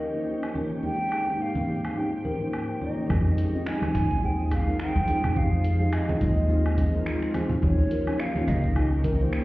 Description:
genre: sunset chillout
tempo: 106 BPM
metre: 4/4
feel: swing 57% on 16ths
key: F minor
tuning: A4 = 440 Hz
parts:
  - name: breathy mellow concert flute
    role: melody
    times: 0.0-9.0 s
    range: Db5 to Ab5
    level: -32 LUFS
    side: right 1 dB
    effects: tape echo
  - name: shimmering ambient pad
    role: sustained chords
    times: 0.0-9.4 s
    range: Eb2 to G4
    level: -34 LUFS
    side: right 1 dB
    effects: chorus, built-in reverb, vintage 12-bit sampler grit
  - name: kalimba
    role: arpeggios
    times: 0.0-9.4 s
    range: Eb4 to Db5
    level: -34 LUFS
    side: left 2 dB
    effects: tape echo
  - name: mellow FM electric piano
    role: accompaniment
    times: 0.1-9.4 s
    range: F3 to Ab5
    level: -31 LUFS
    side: equal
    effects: chorus, auto-pan
  - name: smooth R&B drum kit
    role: drums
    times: 0.4-9.4 s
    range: cabasa, finger snaps, hi-hat, woodblock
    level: -39 LUFS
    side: equal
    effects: none
  - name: congas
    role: percussion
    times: 0.6-9.2 s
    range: none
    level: -32 LUFS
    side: right 1 dB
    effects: none
  - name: upright bass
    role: bass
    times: 3.1-9.2 s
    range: Db2 to F2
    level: -25 LUFS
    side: equal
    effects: none
  - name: electronic kick drum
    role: drums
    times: 3.1-9.2 s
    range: none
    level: -27 LUFS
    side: equal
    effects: none
room: moderate plate reverb, RT60 1.8 s, small room ambience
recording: heard muffled through a wall, stone room reverb, EQ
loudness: -23 LUFS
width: side -18 dB against mid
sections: 0.0-3.1 A section; 3.1-9.4 B section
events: none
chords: 0.0 Eb7; 0.8 Abmaj7; 2.0 Eb7; 3.1 Fm7; 7.6 Eb7

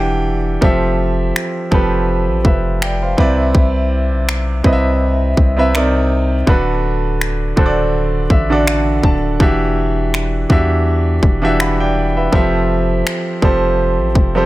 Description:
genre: contemporary R&B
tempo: 82 BPM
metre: 4/4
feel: swing 54% on 16ths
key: E minor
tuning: A4 = 440 Hz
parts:
  - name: clear baby grand piano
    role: accompaniment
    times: 0.0-14.5 s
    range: C3 to B5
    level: -16 LUFS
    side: right 1 dB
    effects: none
  - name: long sustained 808-style bass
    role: bass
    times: 0.0-14.5 s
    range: D1 to E2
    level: -18 LUFS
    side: equal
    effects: none
  - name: trap drum kit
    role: drums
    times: 0.6-14.3 s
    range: finger snaps, kick drum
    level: -15 LUFS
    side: equal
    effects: none
room: digital ambience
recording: none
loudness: -13 LUFS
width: side -17 dB against mid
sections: 0.0-14.5 A section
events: grand piano fill 7.9-9.4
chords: 0.0 Em7; 0.6 Fmaj7; 3.2 Cmaj9; 5.7 Cm7; 6.5 Bm7/D; 9.4 Em7; 12.3 Fmaj7

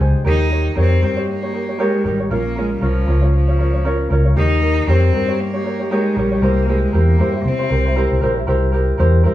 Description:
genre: acoustic pop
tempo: 117 BPM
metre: 4/4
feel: swing 60% on 16ths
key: unclear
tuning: A4 = 440 Hz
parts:
  - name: tenor ukulele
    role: accompaniment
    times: 0.0-9.3 s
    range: Db4 to Db5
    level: -20 LUFS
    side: right 1 dB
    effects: none
  - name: vintage muted fingered electric bass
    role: bass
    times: 0.0-9.3 s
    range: Ab1 to C3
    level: -16 LUFS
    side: equal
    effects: none
  - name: warm cello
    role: melody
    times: 0.3-8.2 s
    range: F3 to Eb4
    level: -22 LUFS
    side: left 2 dB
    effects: none
room: moderate studio reverb, RT60 0.9 s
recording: band playing live in one room, small room ambience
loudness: -14 LUFS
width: side -14 dB against mid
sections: 0.0-8.5 A section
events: none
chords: 0.3 Eb7; 2.3 Bbm; 4.4 Eb7; 6.4 C7

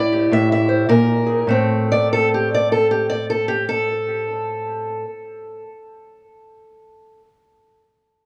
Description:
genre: acoustic country blues, solo or duo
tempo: 103 BPM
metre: 4/4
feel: swing 66% on 8ths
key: A minor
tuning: A4 = 440 Hz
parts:
  - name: fingerpicked steel-string acoustic guitar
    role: solo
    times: 0.0-7.2 s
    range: A2 to E5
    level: -19 LUFS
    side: equal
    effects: analog delay
room: moderate booth ambience, RT60 0.2 s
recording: dark, warm production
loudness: -19 LUFS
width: mono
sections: 0.0-1.5 A section; 1.5-6.1 B section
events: slowing down 0.0-1.5; steel-string acoustic guitar solo 0.0-1.5; stop 0.0-0.9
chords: 0.0 Am7; 0.9 G#sus2/A#; 1.5 Am

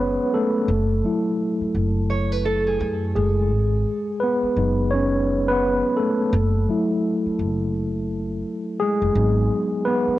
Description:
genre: lo-fi hip hop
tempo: 85 BPM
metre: 4/4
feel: swing 62% on 16ths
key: F# dorian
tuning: A4 = 438 Hz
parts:
  - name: mellow tine electric piano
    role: accompaniment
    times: 0.0-10.2 s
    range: F#3 to C#5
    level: -21 LUFS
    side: equal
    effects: medium stereo tremolo, cassette tape
  - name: upright bass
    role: bass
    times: 0.0-10.1 s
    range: F#1 to F#2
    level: -23 LUFS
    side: equal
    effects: none
  - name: nylon-string guitar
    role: second line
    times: 2.1-3.5 s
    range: G#4 to C#5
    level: -26 LUFS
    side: right 3 dB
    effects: tape echo
room: moderate spring reverb, RT60 2.6 s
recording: worn, warbling old tape, cassette tape, warbly pitch drift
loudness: -19 LUFS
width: side -15 dB against mid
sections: 0.0-10.2 A section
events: tine electric piano solo 0.0-10.2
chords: 0.0 G#m7; 0.7 F#m9; 3.5 G#m7; 6.3 F#m9; 9.2 G#m7

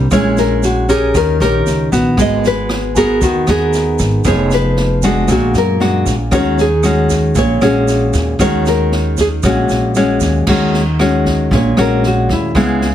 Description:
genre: bossa nova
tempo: 116 BPM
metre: 4/4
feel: straight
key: Eb minor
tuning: A4 = 440 Hz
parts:
  - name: nylon-string guitar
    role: melody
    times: 0.0-12.8 s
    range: Fb4 to Eb5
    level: -17 LUFS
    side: equal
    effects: none
  - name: nylon-string guitar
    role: accompaniment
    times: 0.0-12.9 s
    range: Bb2 to Bb4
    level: -15 LUFS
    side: left 1 dB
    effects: none
  - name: upright bass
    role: bass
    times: 0.0-12.9 s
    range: F1 to F#2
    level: -17 LUFS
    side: equal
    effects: none
  - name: swinging big-band drum kit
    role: drums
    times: 0.1-12.9 s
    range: crash cymbal, kick drum, rim click, snare drum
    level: -22 LUFS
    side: right 1 dB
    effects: none
  - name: egg shaker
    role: percussion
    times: 0.1-10.5 s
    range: none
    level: -30 LUFS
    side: right 11 dB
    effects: none
room: light reverb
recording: heavily compressed radio sound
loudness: -11 LUFS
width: side -11 dB against mid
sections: 0.0-10.5 A section; 10.5-12.9 B section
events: nylon-string guitar solo 10.5-12.9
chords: 0.1 Bbm7b5; 1.1 Eb7; 2.2 Abm9; 4.2 Fm7b5; 5.3 Bbaug7; 6.3 Ebm7

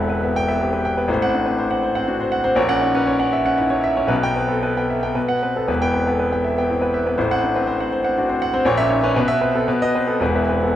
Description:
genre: classical, virtuoso piano study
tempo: 107-124 BPM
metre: 3/4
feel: rubato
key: E minor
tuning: A4 = 440 Hz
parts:
  - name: warm concert grand piano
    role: solo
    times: 0.0-10.8 s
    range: E1 to G5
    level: -17 LUFS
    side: equal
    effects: none
room: wet recital hall reverb, RT60 1.4 s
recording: none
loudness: -17 LUFS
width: side -11 dB against mid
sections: 0.0-10.8 A section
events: none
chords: 0.0 Em; 1.1 F#dim/A; 2.6 F#7/A#; 4.1 Em/B; 5.2 B5; 5.7 Em; 7.2 F#dim/A; 8.6 A#dim; 9.2 E5/B; 9.7 B7; 10.2 E5

